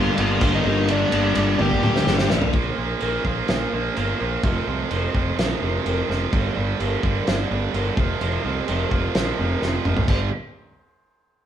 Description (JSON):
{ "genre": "quiet-loud alternative rock", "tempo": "127 BPM", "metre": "4/4", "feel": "straight", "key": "G minor", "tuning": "A4 = 440 Hz", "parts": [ { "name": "smooth overdriven lead guitar", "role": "melody", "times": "0.0-2.3 s", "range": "D4 to G5", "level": "-25 LUFS", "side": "equal", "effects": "none" }, { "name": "sludgy distorted guitar", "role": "riff", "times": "0.0-2.5 s", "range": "G2 to D4", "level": "-24 LUFS", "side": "left 8 dB", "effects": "overdrive" }, { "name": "tight distorted guitar", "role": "riff", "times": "0.0-10.3 s", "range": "F2 to Bb3", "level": "-25 LUFS", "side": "right 6 dB", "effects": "distortion" }, { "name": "fuzz fingered electric bass", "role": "bass", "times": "0.0-10.3 s", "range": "F1 to D2", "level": "-25 LUFS", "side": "equal", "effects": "overdrive" }, { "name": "loose indie drum kit", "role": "drums", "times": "0.2-10.2 s", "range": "crash cymbal, kick drum, ride cymbal, snare drum, toms", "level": "-24 LUFS", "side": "equal", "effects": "none" } ], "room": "moderate stone room reverb, RT60 0.9 s", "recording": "band playing live in one room", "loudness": "-19 LUFS", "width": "side -10 dB against mid", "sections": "0.0-2.5 A section; 2.5-10.1 B section; 10.1-11.5 C section", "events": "drum fill 1.6-2.5, 9.6-10.1", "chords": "0.0 Gm; 2.5 Bb5; 4.4 F5; 6.3 G5; 8.0 F5; 10.1 G5" }